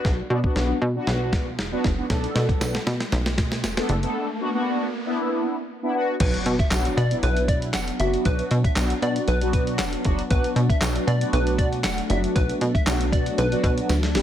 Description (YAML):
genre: dance-pop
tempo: 117 BPM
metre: 4/4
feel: straight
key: B minor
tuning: A4 = 440 Hz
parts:
  - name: mellow synth brass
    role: accompaniment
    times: 0.0-14.2 s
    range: F#3 to A4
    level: -27 LUFS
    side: equal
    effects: chorus, phaser, sidechain pumping
  - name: plucky analog bass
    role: bass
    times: 0.0-14.2 s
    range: E1 to B2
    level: -24 LUFS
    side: equal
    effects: sidechain pumping
  - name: dusty soul sampler-style drum kit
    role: drums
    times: 0.0-14.2 s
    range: crash cymbal, handclaps, hi-hat, kick drum, snare drum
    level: -25 LUFS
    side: equal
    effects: none
  - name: riser and impact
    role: sound effects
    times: 1.7-8.3 s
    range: none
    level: -34 LUFS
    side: right 1 dB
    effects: none
  - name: tambourine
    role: percussion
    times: 2.6-14.0 s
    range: none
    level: -39 LUFS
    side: right 6 dB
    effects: none
  - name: plucky unison lead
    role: melody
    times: 6.2-13.7 s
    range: B4 to F#5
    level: -29 LUFS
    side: equal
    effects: sidechain pumping, tape echo
  - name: shimmering ambient pad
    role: sustained chords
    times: 7.3-14.2 s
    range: F#3 to D4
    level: -31 LUFS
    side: equal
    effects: chorus, built-in reverb, sidechain pumping
room: little or no reverb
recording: none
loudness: -20 LUFS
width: side -11 dB against mid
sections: 0.0-6.2 A section; 6.2-14.2 B section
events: build-up 0.0-6.2; drum fill 0.0-4.2, 13.9-14.2; riser 1.7-6.2; drop 6.2-14.2; impact 6.2-8.3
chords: 0.0 Bm